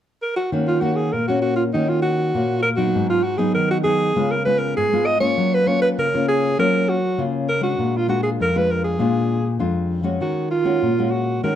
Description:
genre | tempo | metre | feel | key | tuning
samba | 99 BPM | 4/4 | straight | Eb minor | A4 = 440 Hz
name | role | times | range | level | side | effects
breathy alto saxophone | melody | 0.2-11.6 s | Eb4 to Eb5 | -20 LUFS | right 2 dB | plate reverb
nylon-string guitar | accompaniment | 0.5-11.6 s | F2 to Gb4 | -20 LUFS | left 2 dB | none
room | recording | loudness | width
moderate studio reverb, RT60 0.5 s | dark, warm production | -18 LUFS | side -10 dB against mid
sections
0.5-10.2 A section; 10.2-11.6 B section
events
none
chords
0.0 N.C.; 0.5 Ebm7; 3.0 Abm7; 4.2 Db7; 5.4 Gbmaj7; 7.8 Bb7; 10.2 Ebm11

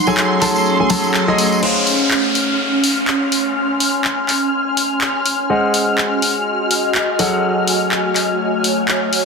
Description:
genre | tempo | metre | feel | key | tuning
piano house | 124 BPM | 4/4 | swing 57% on 16ths | Db major | A4 = 439 Hz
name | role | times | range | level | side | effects
analog string pad | sustained chords | 0.0-9.2 s | C6 to F6 | -22 LUFS | left 2 dB | ensemble chorus
ethereal airy pad | texture | 0.0-9.2 s | A3 to C6 | -19 LUFS | right 1 dB | ensemble chorus, built-in reverb
warm concert grand piano | riff | 0.1-9.2 s | Gb3 to A5 | -19 LUFS | left 1 dB | low-pass filter, tape echo
tambourine and congas | percussion | 0.1-1.6 s | none | -24 LUFS | left 4 dB | none
house drum kit | drums | 0.2-9.2 s | crash cymbal, handclaps, hi-hat | -20 LUFS | left 1 dB | none
downlifter | sound effects | 1.6-5.5 s | none | -23 LUFS | equal | none
room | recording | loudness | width
wet plate reverb, RT60 2.2 s | dense, heavily limited modern master | -14 LUFS | side -4 dB against mid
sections
0.0-1.6 A section; 1.6-9.2 B section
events
band accent 1.1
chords
0.0 Gbmadd9; 1.6 Dbmaj7; 5.5 Ab7; 7.2 Gbmadd9

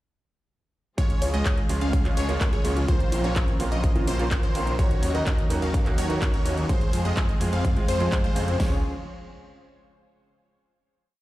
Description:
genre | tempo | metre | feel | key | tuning
EDM, festival progressive house | 126 BPM | 4/4 | straight | Db major | A4 = 442 Hz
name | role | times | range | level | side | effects
clear baby grand piano | accompaniment | 1.0-8.8 s | Bb2 to Ab4 | -32 LUFS | right 3 dB | sidechain pumping, tape echo
warm studio string section | sustained chords | 1.0-8.8 s | C3 to C5 | -36 LUFS | left 1 dB | none
plucky unison lead | arpeggios | 1.0-8.8 s | C5 to F5 | -35 LUFS | left 1 dB | phaser, sidechain pumping, tape echo
big supersaw lead | riff | 1.0-8.8 s | Ab3 to F5 | -32 LUFS | equal | phaser, sidechain pumping, tape echo
big-room dance drum kit | drums | 1.0-8.7 s | hi-hat, kick drum, snare drum | -24 LUFS | equal | none
big-room dance drum kit | drums | 1.0-8.6 s | handclaps, hi-hat, ride cymbal | -35 LUFS | equal | none
bell-like FM electric piano | melody | 1.2-4.3 s | F4 to Db5 | -35 LUFS | left 1 dB | chorus, tape echo
wide detuned saw bass | bass | 1.2-8.8 s | Bb1 to F2 | -26 LUFS | equal | chorus, sidechain pumping
room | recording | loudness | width
light reverb, digital ambience | played on a big sound system in a bare room, large studio reverb | -21 LUFS | side -16 dB against mid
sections
1.0-8.6 drop; 8.6-10.5 final chord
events
drop 1.0-8.6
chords
1.0 Db; 2.9 Bbmadd9; 4.8 Ebm7; 6.7 Fm; 8.6 Db

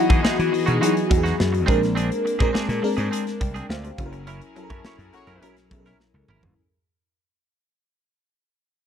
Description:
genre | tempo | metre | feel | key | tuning
polished 1980s jazz-funk pop | 104 BPM | 4/4 | straight | unclear | A4 = 440 Hz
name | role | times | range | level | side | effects
FM electric piano with soft pad layer | accompaniment | 0.0-6.6 s | F#3 to G5 | -23 LUFS | left 2 dB | phaser, lush chorus
clear studio string section | sustained chords | 0.0-6.6 s | E3 to D#5 | -30 LUFS | equal | none
clean electric guitar | riff | 0.1-6.5 s | G#3 to C#5 | -30 LUFS | right 5 dB | wide subtle chorus
slap bass | bass | 0.1-6.5 s | E1 to E3 | -25 LUFS | equal | none
modern studio drum kit | drums | 0.1-6.6 s | hi-hat, kick drum, snare drum, toms | -23 LUFS | equal | none
warm horn section | second line | 5.1-5.5 s | A#3 to C#5 | -53 LUFS | left 4 dB | none
room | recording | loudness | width
small room ambience | dry, close 1970s-style studio recording | -19 LUFS | side -8 dB against mid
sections
0.0-6.6 A section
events
fade-out 0.0-6.6; band accent 4.3-6.6; drum fill 6.0-6.6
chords
0.0 Emaj9; 1.7 A#9; 4.0 F#7

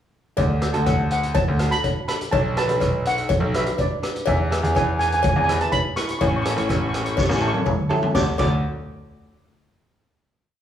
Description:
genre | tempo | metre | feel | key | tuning
calypso | 124 BPM | 4/4 | straight | D major | A4 = 441 Hz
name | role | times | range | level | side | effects
steel pan | melody | 0.4-8.6 s | D5 to D6 | -26 LUFS | right 1 dB | none
bright concert grand piano | bass | 0.4-8.6 s | A1 to E2 | -23 LUFS | equal | none
street-band drum kit | drums | 0.4-8.5 s | crash cymbal, hi-hat, kick drum, rim click, snare drum, toms | -24 LUFS | equal | none
cowbell | percussion | 0.4-8.6 s | none | -28 LUFS | left 6 dB | none
tenor ukulele | accompaniment | 0.6-8.6 s | D4 to D5 | -28 LUFS | right 1 dB | none
room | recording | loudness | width
moderate recital hall reverb, RT60 1.4 s | recorded in a church or concert hall, small room ambience | -19 LUFS | side -10 dB against mid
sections
0.4-8.1 verse; 8.1-10.1 final chord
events
drum fill 7.2-8.1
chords
0.4 D; 2.3 Bm7; 4.3 E; 6.2 A; 8.1 D

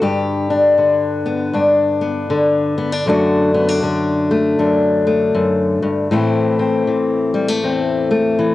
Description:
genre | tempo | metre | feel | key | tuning
folk, solo fingerstyle acoustic guitar | 79 BPM | 4/4 | swing 62% on 8ths | G major | A4 = 443 Hz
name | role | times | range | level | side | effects
fingerpicked steel-string acoustic guitar | solo | 0.0-8.5 s | E2 to G4 | -14 LUFS | left 2 dB | cassette tape
room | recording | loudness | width
moderate spring reverb, RT60 2.6 s | home recording on cassette | -14 LUFS | side -15 dB against mid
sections
0.0-8.5 A section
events
none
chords
0.0 G; 3.1 D/F#; 6.1 Am

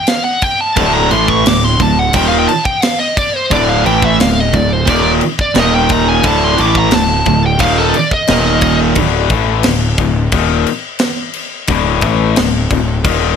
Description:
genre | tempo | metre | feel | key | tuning
heavy metal | 88 BPM | 4/4 | straight | D phrygian | A4 = 440 Hz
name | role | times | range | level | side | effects
high-gain lead guitar | melody | 0.0-8.8 s | A4 to D6 | -15 LUFS | equal | distortion
tight metal drum kit | drums | 0.1-13.2 s | crash cymbal, kick drum, snare drum | -17 LUFS | equal | none
high-gain distorted guitar | riff | 0.8-9.0 s | D2 to A3 | -15 LUFS | right 13 dB | distortion
tight distorted guitar | riff | 0.8-13.4 s | D2 to A3 | -16 LUFS | left 13 dB | distortion
fuzz picked electric bass | bass | 0.8-13.4 s | D1 to A1 | -17 LUFS | equal | overdrive
room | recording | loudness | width
little or no reverb | none | -10 LUFS | side -7 dB against mid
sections
0.0-9.0 A section; 9.0-13.4 B section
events
lead electric guitar solo 0.0-9.0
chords
0.0 D5; 5.6 Eb5; 6.2 D5; 8.3 Eb5; 9.0 D5

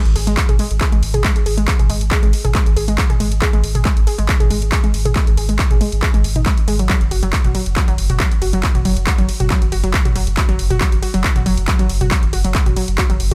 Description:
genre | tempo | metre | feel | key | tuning
driving peak-time techno | 138 BPM | 4/4 | straight | unclear | A4 = 443 Hz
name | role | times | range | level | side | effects
saturated sub bass | bass | 0.1-13.3 s | F#1 to G#1 | -21 LUFS | equal | tube saturation, sidechain pumping, low-pass filter
techno drum kit | drums | 0.1-13.3 s | handclaps, hi-hat, ride cymbal, toms | -24 LUFS | equal | overdrive, sidechain pumping on hats, studio reverb, sidechain pumping on cymbals, sidechain pumping on toms
warbly dusty pluck | riff | 0.2-13.3 s | F#3 to G#4 | -25 LUFS | equal | chorus, tube saturation, sidechain pumping, digital delay
electronic kick drum | drums | 0.4-13.1 s | none | -19 LUFS | equal | overdrive, studio reverb
room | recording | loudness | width
digital ambience | none | -16 LUFS | mono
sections
0.0-13.3 A section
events
none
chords
0.0 G#5; 6.9 N.C.

